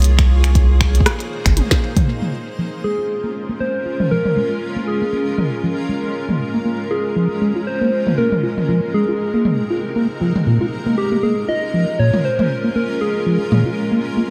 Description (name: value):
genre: IDM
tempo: 118 BPM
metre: 4/4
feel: swing 56% on 16ths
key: Bb minor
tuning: A4 = 440 Hz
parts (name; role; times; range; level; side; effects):
- granular cloud pad; sustained chords; 0.0-14.3 s; C3 to C5; -26 LUFS; equal; built-in reverb
- rubbery square bass; bass; 0.0-1.6 s; G1 to C2; -15 LUFS; equal; none
- glitchy drum kit; drums; 0.0-13.6 s; finger snaps, hi-hat, rim click, snare drum, toms; -23 LUFS; equal; low-pass filter on hats, studio reverb, low-pass filter on snare, low-pass filter on toms
- electronic kick drum; drums; 0.2-2.1 s; none; -19 LUFS; equal; studio reverb
- deep acid bass; arpeggios; 2.1-14.2 s; Bb2 to F4; -22 LUFS; equal; digital delay
- soft struck synth lead; melody; 2.8-14.0 s; G4 to Eb5; -24 LUFS; equal; chorus, tape echo
room: light reverb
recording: none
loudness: -18 LUFS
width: mono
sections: 0.0-2.1 A section; 2.1-14.3 B section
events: drum fill 1.6-2.1; filter sweep on acid bass 2.1-14.3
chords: 0.0 Abadd9/C; 2.1 Bbm7; 8.2 Abadd9/C; 10.2 Bbm7